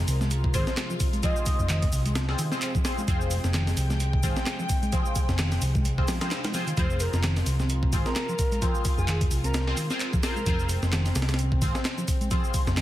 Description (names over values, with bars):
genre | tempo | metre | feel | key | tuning
breakbeat, breaks | 130 BPM | 4/4 | swing 57% on 16ths | F minor | A4 = 440 Hz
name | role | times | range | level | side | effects
dark studio string section | sustained chords | 0.0-12.8 s | C3 to G5 | -38 LUFS | left 1 dB | sidechain pumping
band-passed chord stab | stabs | 0.0-12.8 s | C4 to C5 | -34 LUFS | left 2 dB | phaser, ensemble chorus, ping-pong delay
hollow-body short-scale picked electric bass | bass | 0.0-12.8 s | F1 to C2 | -26 LUFS | equal | none
breakbeat sampler-style drum kit | drums | 0.1-12.8 s | hi-hat, kick drum, snare drum | -27 LUFS | equal | none
punchy analog drum machine | drums | 0.1-12.8 s | handclaps, hi-hat, shaker | -35 LUFS | right 1 dB | none
picked electric bass | riff | 0.2-12.8 s | Eb3 to C4 | -33 LUFS | equal | tube saturation, ping-pong delay
airy dreamy lead | melody | 0.5-1.9, 6.8-10.7 s | Ab4 to Eb5 | -35 LUFS | equal | chorus, telephone sound, cassette tape, ping-pong delay
room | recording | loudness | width
little or no reverb | dense, heavily limited modern master | -23 LUFS | side -14 dB against mid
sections
0.0-12.8 A section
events
none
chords
0.0 Fm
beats
0.31 0.77 | 1.23 1.69 2.16 2.62 | 3.08 3.54 4.00 4.46 | 4.92 5.39 5.85 6.31 | 6.77 7.23 7.69 8.16 | 8.62 9.08 9.54 10.00 | 10.46 10.93 11.39 11.85 | 12.31 12.77